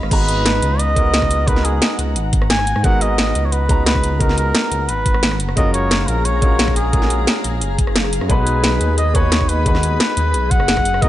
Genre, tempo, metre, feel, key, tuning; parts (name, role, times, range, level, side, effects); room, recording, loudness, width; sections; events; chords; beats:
liquid drum and bass; 176 BPM; 4/4; straight; G# dorian; A4 = 440 Hz
glassy FM pad; sustained chords; 0.0-11.1 s; F#4 to B5; -28 LUFS; left 5 dB; ensemble chorus, built-in reverb
dark detuned saw bass; bass; 0.0-11.1 s; F#1 to G#2; -19 LUFS; equal
drum and bass drum kit; drums; 0.0-11.1 s; crash cymbal, hi-hat, rim click, snare drum; -20 LUFS; equal
trumpet with cup mute; melody; 0.1-11.1 s; G#4 to G#5; -21 LUFS; equal; digital delay
dark grand piano; accompaniment; 0.1-11.1 s; G#3 to A#5; -24 LUFS; equal; tape echo
electronic kick drum; drums; 0.1-11.1 s; -18 LUFS; equal
light reverb; nothing above 10.6 kHz; -14 LUFS; side -14 dB against mid
0.1-11.1 A section
drop 0.1-11.1
0.1 G#m9; 5.4 F#maj9; 8.3 B6
| 0.11 0.46 0.80 1.14 | 1.48 1.82 2.16 2.50 | 2.84 3.18 3.52 3.86 | 4.21 4.55 4.89 5.23 | 5.57 5.91 6.25 6.59 | 6.93 7.27 7.61 7.96 | 8.30 8.64 8.98 9.32 | 9.66 10.00 10.34 10.68 | 11.02